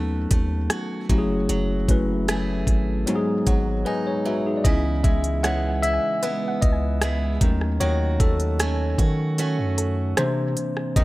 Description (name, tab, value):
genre	contemporary R&B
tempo	76 BPM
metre	4/4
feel	straight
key	C# minor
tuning	A4 = 440 Hz
part	tine electric piano	accompaniment	0.0-11.0 s	D#3 to G#5	-25 LUFS	left 2 dB	none
part	picked steel-string acoustic guitar	arpeggios	0.0-11.0 s	G#2 to G#4	-29 LUFS	right 4 dB	none
part	long sustained 808-style bass	bass	0.0-11.0 s	F#1 to D#3	-24 LUFS	equal	none
part	smooth R&B drum kit	drums	0.3-11.0 s	hi-hat, kick drum, rim click	-22 LUFS	equal	none
part	soft round pluck	texture	5.4-10.5 s	A4 to G#5	-35 LUFS	equal	chorus, analog delay
room	light reverb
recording	none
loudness	-20 LUFS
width	side -18 dB against mid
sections	0.0-4.6 A section; 4.6-11.0 B section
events	tine electric piano fill 3.5-4.6; break 3.9-4.6; tine electric piano solo 4.6-11.0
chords	0.0 B7/D#; 1.1 F#m9; 3.1 G#m7; 4.6 C#m7; 7.4 D#m7b5; 10.2 C9